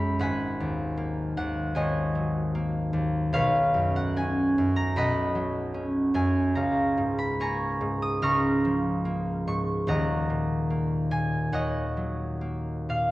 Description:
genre	classical, solo harp piece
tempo	63-79 BPM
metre	4/4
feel	rubato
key	Db mixolydian from 3.3 s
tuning	A4 = 438 Hz
part	concert harp	solo	0.0-13.1 s	Eb1 to F6	-24 LUFS	equal	none
room	moderate scoring stage reverb, RT60 1.6 s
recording	worn, warbling old tape, cassette tape, warbly pitch drift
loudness	-24 LUFS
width	side -17 dB against mid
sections	0.0-13.1 A section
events	none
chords	0.2 G#m11; 3.3 Cbadd9; 6.6 Db6; 9.9 Ebm7

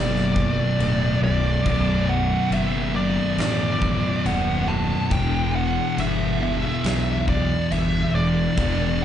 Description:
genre	stoner and doom metal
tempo	69 BPM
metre	4/4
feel	straight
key	B minor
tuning	A4 = 443 Hz
part	fuzz lead guitar	melody	0.0-9.0 s	D5 to A5	-27 LUFS	right 1 dB	wah, distortion, slapback echo, analog delay
part	thick fuzz guitar	riff	0.0-9.0 s	B1 to E3	-26 LUFS	left 8 dB	distortion
part	thick fuzz guitar	riff	0.0-9.0 s	B1 to E3	-25 LUFS	right 6 dB	distortion
part	fuzz fingered electric bass	bass	0.0-9.0 s	B0 to B1	-25 LUFS	equal	overdrive, tube saturation
part	big rock drum kit	drums	0.2-8.8 s	crash cymbal, kick drum, snare drum	-30 LUFS	left 1 dB	none
room	small room ambience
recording	live gig heard through the venue's PA, club reverb, nothing above 10.5 kHz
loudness	-19 LUFS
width	side -10 dB against mid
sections	0.0-9.0 A section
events	none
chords	0.0 Bm; 5.1 Em

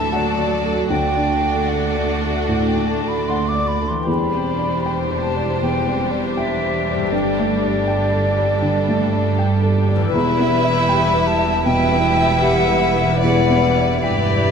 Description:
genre	cinematic, emotional film score for orchestra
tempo	78 BPM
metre	4/4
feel	uneven beats, rubato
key	E minor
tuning	A4 = 441 Hz
part	hollow concert flute	second line	0.0-14.5 s	D5 to D6	-22 LUFS	equal	none
part	rich studio violin section	second line	0.0-14.5 s	F#4 to E5	-24 LUFS	left 4 dB	none
part	bright studio viola section	accompaniment	0.0-14.5 s	E3 to A4	-24 LUFS	right 1 dB	none
part	felt-muted upright piano	accompaniment	0.0-14.5 s	D2 to G5	-22 LUFS	left 1 dB	none
part	concert harp	arpeggios	0.0-14.5 s	E2 to B4	-27 LUFS	left 8 dB	none
part	rich studio cello section	bass	0.0-14.5 s	D2 to G2	-25 LUFS	right 3 dB	none
part	rich studio double bass section	bass	0.0-14.5 s	E1 to D2	-24 LUFS	right 4 dB	none
room	moderate scoring stage reverb, RT60 1.5 s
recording	none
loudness	-16 LUFS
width	side -6 dB against mid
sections	0.0-14.5 A section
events	none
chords	0.0 D; 4.1 Cadd9/E; 7.1 Gsus2; 10.1 Em

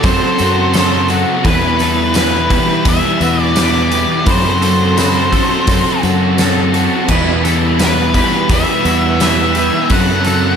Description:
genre	rock, shoegaze and dream pop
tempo	85 BPM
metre	4/4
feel	straight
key	E minor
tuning	A4 = 439 Hz
part	octave-fuzz lead guitar	melody	0.0-10.6 s	B4 to F#5	-18 LUFS	left 1 dB	distortion, slapback echo
part	string machine, violas	sustained chords	0.0-10.6 s	G3 to B5	-24 LUFS	equal	ensemble chorus
part	electric guitar through a small old amp	arpeggios	0.0-10.6 s	F#4 to B5	-24 LUFS	left 3 dB	lush chorus, slapback echo
part	raw garage guitar	riff	0.0-10.6 s	E3 to B4	-20 LUFS	right 11 dB	overdrive, reverse reverb
part	thick fuzz guitar	riff	0.0-10.6 s	E2 to F#3	-20 LUFS	left 9 dB	distortion, wide subtle chorus
part	tight distorted guitar	riff	0.0-10.6 s	E3 to B4	-20 LUFS	equal	distortion
part	overdriven fingered electric bass	bass	0.0-10.6 s	E2 to F#2	-17 LUFS	equal	none
part	gated 80s drum kit	drums	0.0-10.4 s	crash cymbal, hi-hat, kick drum, snare drum	-18 LUFS	equal	none
part	tambourine	percussion	0.0-10.4 s	none	-29 LUFS	right 5 dB	none
room	light reverb, studio ambience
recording	none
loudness	-11 LUFS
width	side -7 dB against mid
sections	0.0-10.6 A section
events	none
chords	0.0 F#dim; 1.4 Em; 4.3 F#dim; 7.1 Em; 9.9 F#dim

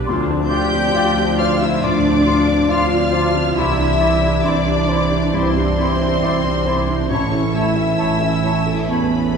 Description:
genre	cinematic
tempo	68 BPM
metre	4/4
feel	rubato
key	D dorian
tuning	A4 = 439 Hz
part	felt-muted upright piano	accompaniment	0.0-9.4 s	A1 to A5	-22 LUFS	left 2 dB	none
part	warm symphonic viola section	accompaniment	0.0-9.4 s	A3 to A4	-26 LUFS	equal	none
part	bright clarinet	second line	0.1-9.1 s	E4 to F4	-29 LUFS	left 2 dB	none
part	flute section	second line	0.1-9.4 s	A5 to C6	-29 LUFS	left 1 dB	none
part	warm oboe	second line	0.1-9.1 s	C#5 to D5	-30 LUFS	left 2 dB	none
part	mellow French horn section	sustained chords	0.1-9.4 s	E3 to D4	-22 LUFS	right 2 dB	none
part	rich symphonic double bass section	bass	0.1-9.4 s	A1 to D2	-23 LUFS	right 2 dB	none
part	clear symphonic violin section	melody	0.5-9.4 s	B5 to G6	-26 LUFS	left 2 dB	none
part	warm symphonic violin section	second line	0.5-9.4 s	B4 to G5	-24 LUFS	left 3 dB	none
part	warm symphonic cello section	bass	0.5-9.4 s	B3 to G4	-23 LUFS	right 1 dB	none
room	wet scoring stage reverb, RT60 1.7 s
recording	heard from further back in the room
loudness	-15 LUFS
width	side -6 dB against mid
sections	0.0-9.4 A section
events	none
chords	0.1 Dm7; 3.6 Cadd9; 7.1 A

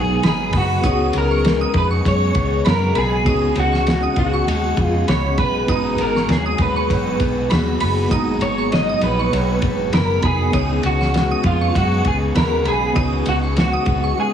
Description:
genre	indie pop, bedroom pop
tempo	99 BPM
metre	4/4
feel	swing 55% on 16ths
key	unclear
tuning	A4 = 440 Hz
part	electric guitar through a small old amp	melody	0.0-14.3 s	E#4 to D#5	-21 LUFS	equal	ensemble chorus, slapback echo
part	flamenco guitar	accompaniment	0.0-14.3 s	G#2 to F#4	-26 LUFS	left 5 dB	lush chorus, vibrato effect
part	reed electric piano	accompaniment	0.0-14.3 s	F#3 to A#5	-27 LUFS	right 3 dB	fast tremolo, cassette tape
part	warbly tape-like pad	sustained chords	0.0-14.3 s	C#3 to G#4	-26 LUFS	left 2 dB	chorus, built-in reverb
part	vintage muted fingered electric bass	bass	0.0-14.1 s	E#1 to F#2	-21 LUFS	equal	none
part	shimmering bell with halo	second line	0.2-14.3 s	B5 to D#6	-28 LUFS	right 6 dB	ensemble chorus, tremolo, wide subtle chorus, slapback echo
part	cloth-damped thuddy drum kit	drums	0.2-14.0 s	hi-hat, kick drum, ride cymbal, snare drum	-23 LUFS	equal	none
room	light reverb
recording	heavily compressed radio sound, multiband compression, small room ambience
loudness	-16 LUFS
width	side -9 dB against mid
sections	0.0-14.3 A section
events	none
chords	0.0 G#m7; 0.8 C#7sus4; 5.7 G#m7; 10.5 C#7sus4

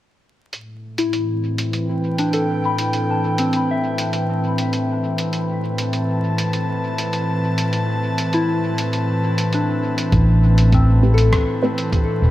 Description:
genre	ambient dub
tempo	100 BPM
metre	4/4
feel	straight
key	A minor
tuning	A4 = 440 Hz
part	airy breathy pad	sustained chords	0.5-12.3 s	A2 to A5	-21 LUFS	equal	chorus
part	lo-fi sampler-style drum kit	drums	0.5-12.1 s	hi-hat, rim click	-28 LUFS	right 1 dB	studio reverb, dub echo
part	soft synth bell	arpeggios	1.0-12.3 s	C4 to B5	-24 LUFS	left 2 dB	chorus, phaser, low-pass filter, dub echo
part	fingered electric bass	bass	10.1-12.3 s	E1 to A1	-13 LUFS	equal	tube saturation
part	electronic kick drum	drums	10.1-12.0 s	none	-19 LUFS	equal	studio reverb
part	filtered dub chord stab	stabs	11.0-11.8 s	A3 to B4	-24 LUFS	right 1 dB	none
room	light reverb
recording	vinyl crackle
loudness	-17 LUFS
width	side -14 dB against mid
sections	0.5-10.1 A section; 10.1-12.3 B section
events	filter sweep on analog synth pad 0.5-10.1; filter sweep on synth bell 0.5-10.1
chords	0.5 Am9

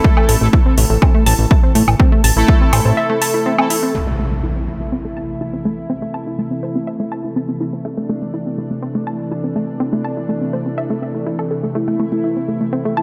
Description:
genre	melodic techno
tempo	123 BPM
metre	4/4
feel	straight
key	A minor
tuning	A4 = 441 Hz
part	lush unison pad	sustained chords	0.0-13.0 s	C3 to A4	-27 LUFS	equal	chorus, sidechain pumping
part	tight sequenced synth	arpeggios	0.0-13.0 s	A3 to A5	-24 LUFS	equal	chorus, sidechain pumping, dub echo
part	analog synth brass	stabs	0.0-3.9 s	A3 to A4	-23 LUFS	equal	chorus, sidechain pumping, dub echo
part	electronic kick drum	drums	0.0-2.6 s	none	-14 LUFS	equal	overdrive
part	electronic woodblock and hi-hat	drums	0.2-3.8 s	none	-22 LUFS	equal	overdrive
part	fat analog bass	bass	0.3-2.9 s	A1 to A2	-17 LUFS	equal	sidechain pumping
part	impact	sound effects	3.9-5.9 s	none	-26 LUFS	equal	none
part	soft octave-layered synth lead	melody	11.8-13.0 s	E4	-24 LUFS	equal	chorus, phaser, sidechain pumping, delay
room	light reverb, digital ambience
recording	none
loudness	-17 LUFS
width	mono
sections	0.0-3.9 A section; 3.9-13.0 B section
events	break 3.0-3.9; impact 3.9-5.9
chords	0.0 Am

